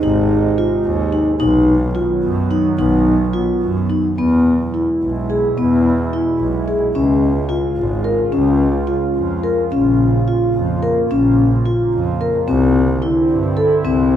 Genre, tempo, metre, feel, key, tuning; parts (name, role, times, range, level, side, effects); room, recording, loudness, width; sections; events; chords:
contemporary instrumental, chamber music in an uneven meter; 217 BPM (eighths); 5/8; straight; A4 = 440 Hz
warbly tape-like pad; sustained chords; 0.0-14.2 s; B2 to F4; -21 LUFS; right 4 dB; chorus, built-in reverb, phaser
vibraphone with soft mallets; arpeggios; 0.0-14.2 s; B3 to Bb4; -16 LUFS; left 2 dB
rich double bass; bass; 0.0-14.2 s; Ab1 to G2; -20 LUFS; right 1 dB
light reverb; -14 LUFS; side -10 dB against mid
0.0-4.2 A section; 4.2-14.2 B section
0.0 Ab; 1.4 B; 4.2 E; 6.9 Db; 9.7 Bbm; 12.5 Cadd9